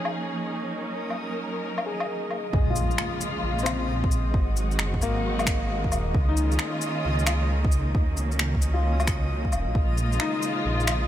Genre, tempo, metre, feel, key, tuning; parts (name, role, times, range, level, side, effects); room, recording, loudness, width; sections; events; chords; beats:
future garage; 133 BPM; 4/4; swing 66% on 16ths; Bb minor; A4 = 439 Hz
clear upright piano; accompaniment; 0.0-11.1 s; Bb3 to Db5; -33 LUFS; left 4 dB; sidechain pumping, ping-pong delay
dark symphonic string section; sustained chords; 0.0-11.1 s; Db3 to Bb4; -30 LUFS; right 1 dB; sidechain pumping
backwards swelling texture; texture; 0.0-11.1 s; Eb5; -35 LUFS; right 2 dB; built-in reverb
electronic woodblock, shaker and finger snaps; drums; 0.1-11.0 s; -30 LUFS; left 2 dB; overdrive
dark detuned saw bass; bass; 2.5-11.1 s; Eb1 to Eb2; -26 LUFS; equal; sidechain pumping
electronic kick drum; drums; 2.5-9.9 s; -25 LUFS; equal; overdrive
impact; sound effects; 2.5-4.3 s; -35 LUFS; right 1 dB
little or no reverb; -23 LUFS; side -12 dB against mid
0.0-2.5 A section; 2.5-11.1 B section
impact 2.5-4.3
0.0 Db69; 0.7 Ebm7; 2.5 Bbm7; 4.3 Ab7; 6.1 Db69; 7.9 Ebm7; 9.8 Bbm7
0.28 | 0.73 1.18 1.63 2.08 | 2.53 2.98 3.43 3.88 | 4.34 4.79 5.24 5.69 | 6.14 6.59 7.04 7.49 | 7.95 8.40 8.85 9.30 | 9.75 10.20 10.65